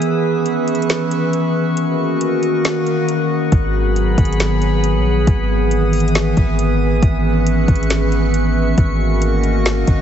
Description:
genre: hip hop, atmospheric cloud-rap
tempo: 137 BPM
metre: 4/4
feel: half-time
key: unclear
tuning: A4 = 438 Hz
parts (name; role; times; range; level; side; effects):
- warbly tape-like pad; sustained chords; 0.0-10.0 s; D#3 to B4; -18 LUFS; equal; chorus, built-in reverb, sidechain pumping
- smooth R&B drum kit; drums; 0.0-10.0 s; hi-hat, kick drum, snare drum; -17 LUFS; equal; none
- drifting glass-harmonics texture; texture; 0.0-10.0 s; F#4 to D#6; -25 LUFS; equal; chorus, built-in reverb
- long sustained 808-style bass; bass; 3.5-10.0 s; G#1 to A#1; -17 LUFS; equal; none
room: light reverb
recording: heavily compressed radio sound, nothing above 7.9 kHz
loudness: -14 LUFS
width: side -9 dB against mid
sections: 0.0-10.0 A section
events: break 0.0-3.5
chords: 0.0 C#m7; 1.8 D#m7; 3.5 G#m7; 5.3 Emaj7/G#; 7.0 C#m7/G#; 8.8 D#m7/G#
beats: | 0.02 0.46 0.90 1.33 | 1.77 2.21 2.65 3.08 | 3.52 3.96 4.40 4.84 | 5.27 5.71 6.15 6.59 | 7.03 7.46 7.90 8.34 | 8.78 9.22 9.65

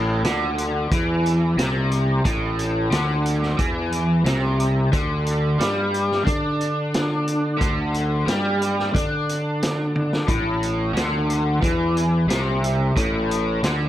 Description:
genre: psychedelic rock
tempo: 90 BPM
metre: 4/4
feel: straight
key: A minor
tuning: A4 = 445 Hz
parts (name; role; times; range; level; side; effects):
- raw garage guitar; riff; 0.0-13.9 s; A2 to D4; -21 LUFS; equal; overdrive, rotary speaker
- fuzz fingered electric bass; bass; 0.0-13.9 s; A1 to D3; -26 LUFS; equal; overdrive
- vintage drum kit; drums; 0.2-13.8 s; hi-hat, kick drum, snare drum, toms; -26 LUFS; equal; none
room: light reverb, studio reverb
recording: none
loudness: -19 LUFS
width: side -12 dB against mid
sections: 0.0-13.9 A section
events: drum fill 9.9-10.3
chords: 0.0 Am; 4.9 Dsus4; 10.3 Am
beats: 0.24 0.91 1.58 | 2.24 2.91 3.58 4.25 | 4.92 5.59 6.26 6.92 | 7.59 8.27 8.94 9.61 | 10.28 10.95 11.62 12.29 | 12.96 13.63

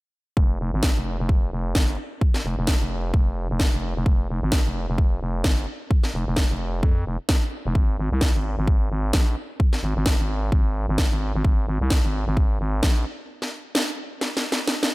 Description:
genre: bass house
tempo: 130 BPM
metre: 4/4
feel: swing 57% on 16ths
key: F minor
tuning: A4 = 439 Hz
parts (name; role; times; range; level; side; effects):
- growling FM bass; bass; 0.4-13.0 s; F1 to F2; -25 LUFS; equal; tube saturation, sidechain pumping
- electronic kick drum; drums; 0.4-12.9 s; none; -20 LUFS; equal; none
- electronic snare drum; drums; 0.8-14.9 s; none; -26 LUFS; equal; none
room: digital ambience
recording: none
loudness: -20 LUFS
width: side -21 dB against mid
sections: 0.4-14.9 A section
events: break 13.3-14.9; drum fill 14.2-14.9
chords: none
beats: | 0.37 0.83 1.29 1.75 | 2.21 2.68 3.14 3.60 | 4.06 4.52 4.98 5.45 | 5.91 6.37 6.83 7.29 | 7.75 8.21 8.68 9.14 | 9.60 10.06 10.52 10.98 | 11.45 11.91 12.37 12.83 | 13.29 13.75 14.21 14.68

